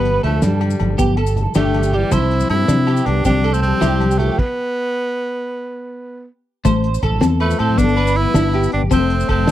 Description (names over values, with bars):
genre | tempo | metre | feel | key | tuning
highlife guitar band | 106 BPM (dotted quarters) | 12/8 | straight | C major | A4 = 439 Hz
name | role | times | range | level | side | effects
breathy tenor saxophone | melody | 0.0-9.5 s | G3 to E4 | -21 LUFS | right 2 dB | none
breathy trombone | second line | 0.0-9.5 s | D3 to C4 | -25 LUFS | left 13 dB | none
electric guitar at the edge of break-up | accompaniment | 0.0-9.5 s | A3 to E4 | -20 LUFS | left 5 dB | analog chorus
clean electric guitar | arpeggios | 0.0-9.5 s | E4 to C5 | -23 LUFS | right 5 dB | ensemble chorus
fingered electric bass | bass | 0.0-9.4 s | F1 to C3 | -18 LUFS | equal | none
cloth-damped thuddy drum kit | drums | 0.1-9.5 s | crash cymbal, hi-hat, kick drum, snare drum | -18 LUFS | equal | none
congas | percussion | 0.1-9.5 s | none | -26 LUFS | equal | none
agogo bells | percussion | 0.2-9.5 s | none | -32 LUFS | left 20 dB | none
maracas | percussion | 0.4-9.5 s | none | -36 LUFS | left 20 dB | none
room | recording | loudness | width
little or no reverb | dry, close 1970s-style studio recording | -14 LUFS | side -13 dB against mid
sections
0.0-6.6 A section; 6.6-9.5 B section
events
stop 4.4-6.6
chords
0.0 G; 2.1 C; 4.4 N.C.; 6.6 Am; 7.8 G6; 8.9 F